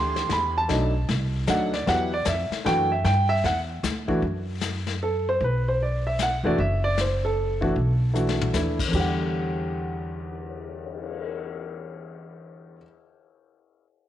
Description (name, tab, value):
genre	jazz piano trio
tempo	153 BPM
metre	3/4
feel	swing 64% on 8ths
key	E minor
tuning	A4 = 439 Hz
part	warm grand piano	melody	0.0-12.8 s	E2 to C6	-25 LUFS	right 1 dB	none
part	upright bass	bass	0.0-12.8 s	F1 to G2	-27 LUFS	equal	none
part	vintage brush drum kit	drums	0.2-11.2 s	brushed snare drum, crash cymbal, cymbal swell, hi-hat, kick drum, snare drum, toms	-32 LUFS	left 6 dB	none
room	moderate echo chamber reverb, RT60 1.5 s, small room ambience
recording	1960s-style stereo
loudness	-22 LUFS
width	side -12 dB against mid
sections	0.0-4.2 A section; 4.2-8.9 B section; 8.9-11.3 C section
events	drum fill 8.2-8.5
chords	0.0 C; 0.7 B7#9; 1.9 Em9; 4.2 N.C.; 5.4 Bsus4; 6.6 F#m7; 7.8 B7sus4; 8.9 Em9